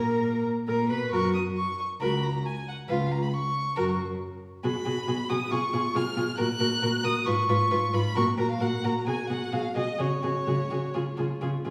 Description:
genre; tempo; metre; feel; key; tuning
quick classical-period movement for string quartet; 136 BPM; 4/4; rubato; F# major from 4.6 s; A4 = 440 Hz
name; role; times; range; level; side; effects
rich violin; melody; 0.0-11.4 s; C#5 to F#6; -33 LUFS; equal; none
warm violin; second line; 0.0-11.7 s; G#4 to Cb5; -36 LUFS; equal; none
clear viola; accompaniment; 0.0-11.7 s; F4 to Cb5; -34 LUFS; equal; none
rich cello; bass; 0.0-11.7 s; Db2 to C#3; -31 LUFS; equal; none
room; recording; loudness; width
wet recital hall reverb, RT60 1.5 s; heard from further back in the room, studio reverb; -27 LUFS; mono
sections
0.0-11.7 A section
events
none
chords
0.2 N.C.; 1.1 Gb; 2.9 Db7; 3.8 Gb; 4.6 G#m7/B; 5.5 C#7/B; 6.4 F#/A#; 7.3 Fdim/Ab; 8.2 F#/A#; 9.1 G#m7/B; 10.0 C#sus4; 10.9 C#

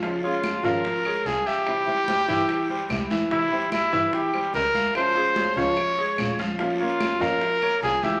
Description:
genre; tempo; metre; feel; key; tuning
latin, Cuban son and guajira; 146 BPM; 4/4; straight; unclear; A4 = 442 Hz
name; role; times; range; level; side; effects
nylon-string guitar; accompaniment; 0.0-8.2 s; C3 to F4; -33 LUFS; equal; none
bright concert grand piano; arpeggios; 0.0-8.2 s; E3 to F5; -31 LUFS; equal; none
bongos; percussion; 0.0-8.0 s; none; -41 LUFS; equal; none
congas; percussion; 0.0-8.2 s; none; -36 LUFS; equal; none
guiro; percussion; 0.0-8.2 s; none; -40 LUFS; equal; none
warm trumpet; melody; 0.2-8.2 s; E4 to Db5; -26 LUFS; equal; none
claves; percussion; 0.4-7.8 s; none; -39 LUFS; equal; none
clear double bass; bass; 0.6-7.9 s; Ab1 to G2; -39 LUFS; equal; none
room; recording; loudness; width
wet large studio reverb, RT60 0.8 s; none; -24 LUFS; mono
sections
0.0-8.2 A section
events
none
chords
0.0 Db; 1.7 C; 5.0 Db; 6.6 Bbm

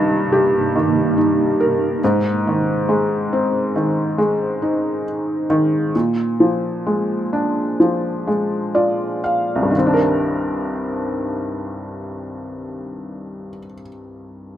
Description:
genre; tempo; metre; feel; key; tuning
pop; 59-70 BPM; 4/4; straight; C minor; A4 = 440 Hz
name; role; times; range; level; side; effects
felt-muted upright piano; accompaniment; 0.0-14.6 s; C2 to F5; -17 LUFS; equal; none
granular cloud pad; sustained chords; 0.0-2.4 s; G2 to Eb4; -23 LUFS; right 4 dB; built-in reverb
room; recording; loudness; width
light reverb; rough home demo mix; -16 LUFS; side -11 dB against mid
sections
0.0-9.7 A section; 9.7-13.8 B section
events
slowing down 2.4-9.7; felt piano fill 8.3-9.7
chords
0.0 Cm7/G; 2.0 Ab; 5.9 Bb7; 9.7 Cm9

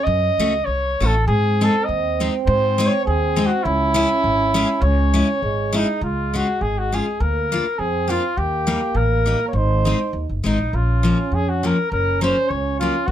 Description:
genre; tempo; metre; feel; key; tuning
alpine folk, alpine dance band; 102 BPM; 2/4; swing 53% on 8ths, rubato; C# harmonic minor, Db major from 6.0 s; A4 = 440 Hz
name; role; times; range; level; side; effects
warm flugelhorn; melody; 0.0-13.1 s; D#4 to D#5; -21 LUFS; equal; none
warm euphonium; second line; 0.0-13.1 s; G#3 to Eb4; -26 LUFS; right 7 dB; none
upright bass; bass; 0.1-13.1 s; Gb1 to G#2; -21 LUFS; equal; none
picked steel-string acoustic guitar; accompaniment; 0.4-12.9 s; F3 to F#4; -22 LUFS; left 3 dB; none
room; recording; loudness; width
little or no reverb; close, detailed microphones; -17 LUFS; side -11 dB against mid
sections
0.0-6.0 A section; 6.0-13.1 B section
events
none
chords
0.0 F#m; 1.3 G#; 3.7 C#m; 6.0 Db; 7.2 Bb/D; 8.4 Eb; 9.5 Ab; 10.7 Bbm; 11.9 Gb

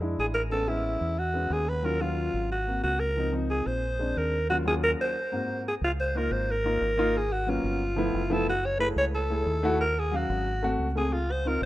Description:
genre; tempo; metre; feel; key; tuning
Afro-Cuban jazz; 181 BPM; 4/4; straight; Db major; A4 = 440 Hz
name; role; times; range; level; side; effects
dark baby grand piano; accompaniment; 0.0-11.7 s; Eb2 to F5; -31 LUFS; left 1 dB; none
deep dub fingered electric bass; bass; 0.0-11.7 s; Gb1 to F2; -30 LUFS; equal; none
growling alto saxophone; melody; 0.2-11.7 s; E4 to Db5; -28 LUFS; equal; none
room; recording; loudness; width
light reverb, small room ambience; rough home demo mix; -25 LUFS; side -16 dB against mid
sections
0.0-5.8 A section; 5.8-11.7 B section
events
none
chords
0.0 Bb7#11 (rootless); 0.5 Amaj7; 1.8 Ebm7; 2.5 Ab7; 3.2 Dbmaj7; 3.8 Bb7; 4.5 Ebm7; 5.2 Ab7; 5.8 Db69; 7.2 Abm11; 7.8 G13; 8.5 Gbm9; 9.8 Ebm9; 10.5 Ab7b9; 11.1 Dbmaj9

